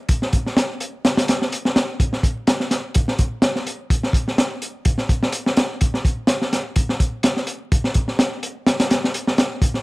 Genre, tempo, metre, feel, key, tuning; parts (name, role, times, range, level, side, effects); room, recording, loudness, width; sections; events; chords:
breakbeat; 126 BPM; 4/4; swing 55% on 16ths
crunchy breakbeat drum kit; drums; 0.1-9.8 s; hi-hat, kick drum, snare drum; -18 LUFS; equal
little or no reverb; vinyl crackle; -18 LUFS; side -23 dB against mid
0.0-9.8 A section